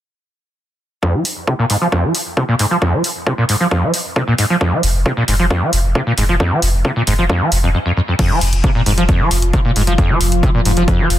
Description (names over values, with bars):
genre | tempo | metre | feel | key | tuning
driving peak-time techno | 134 BPM | 4/4 | straight | F minor | A4 = 440 Hz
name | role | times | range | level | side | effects
overdriven acid bass | riff | 1.0-11.1 s | F2 to F3 | -16 LUFS | equal | distortion, lush chorus, cassette tape, sidechain pumping, tape echo
electronic kick drum | drums | 1.0-11.0 s | none | -17 LUFS | equal | high-pass filter on kick
punchy analog drum machine | drums | 1.2-11.2 s | crash cymbal, hi-hat | -21 LUFS | equal | sidechain pumping on hats, sidechain pumping on cymbals
warm sub bass | bass | 4.8-11.2 s | F1 | -16 LUFS | equal | tube saturation, sidechain pumping, low-pass filter
deep dark ambient pad | drone | 8.9-11.2 s | F3 to F4 | -23 LUFS | equal | chorus, built-in reverb, sidechain pumping
room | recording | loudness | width
little or no reverb | none | -13 LUFS | side -12 dB against mid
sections
1.0-8.2 A section; 8.2-11.2 B section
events
filter sweep on acid bass 1.0-8.2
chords
none